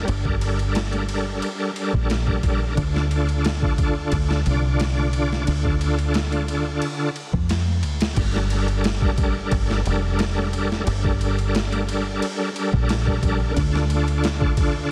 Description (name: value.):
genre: trip hop.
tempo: 89 BPM.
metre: 4/4.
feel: straight.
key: G minor.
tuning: A4 = 437 Hz.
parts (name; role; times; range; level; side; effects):
bright tonewheel organ; accompaniment; 0.0-14.9 s; D3 to D5; -27 LUFS; equal; overdrive, chorus vibrato, fast rotary speaker, tremolo, low-pass filter, tape echo.
deep dub fingered electric bass; bass; 0.0-14.9 s; F1 to F2; -25 LUFS; equal; none.
boom bap sampler-style drum kit; drums; 0.1-14.7 s; crash cymbal, kick drum, ride cymbal, snare drum; -28 LUFS; equal; overdrive.
room: digital ambience.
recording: dense, heavily limited modern master, vinyl crackle.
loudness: -22 LUFS.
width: mono.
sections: 0.0-8.2 A section; 8.2-14.9 B section.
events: none.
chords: 0.0 Gmadd9; 2.8 Dm; 8.2 Gmadd9; 13.6 Dm.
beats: | 0.08 0.76 1.43 2.10 | 2.78 3.45 4.13 4.80 | 5.47 6.15 6.82 7.50 | 8.17 8.85 9.52 10.19 | 10.87 11.54 12.21 12.89 | 13.56 14.24 14.91.